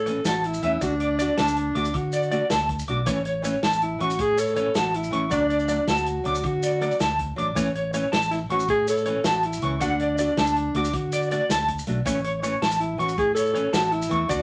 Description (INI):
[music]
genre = highlife guitar band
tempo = 107 BPM (dotted quarters)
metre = 12/8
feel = straight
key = A major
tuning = A4 = 440 Hz
[part]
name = breathy alto saxophone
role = melody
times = 0.0-14.4 s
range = D4 to A4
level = -28 LUFS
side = equal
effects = none
[part]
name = electric guitar at the edge of break-up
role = arpeggios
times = 0.0-14.4 s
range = C#5 to D6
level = -28 LUFS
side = equal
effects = tremolo
[part]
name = fingered electric bass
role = bass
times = 0.0-14.4 s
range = A1 to D3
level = -33 LUFS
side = equal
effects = none
[part]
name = nylon-string guitar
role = accompaniment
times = 0.1-14.4 s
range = E3 to F#4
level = -33 LUFS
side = equal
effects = none
[part]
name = vintage drum kit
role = drums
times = 0.1-14.4 s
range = hi-hat, kick drum, snare drum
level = -33 LUFS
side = equal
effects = none
[part]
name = maracas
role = percussion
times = 0.1-14.4 s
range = none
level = -40 LUFS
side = equal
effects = none
[sound]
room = wet studio reverb, RT60 0.5 s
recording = none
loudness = -24 LUFS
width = mono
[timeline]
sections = 0.0-14.4 A section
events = none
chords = 0.0 A; 0.8 D; 3.1 A; 5.3 D; 7.6 A; 9.8 D; 12.1 A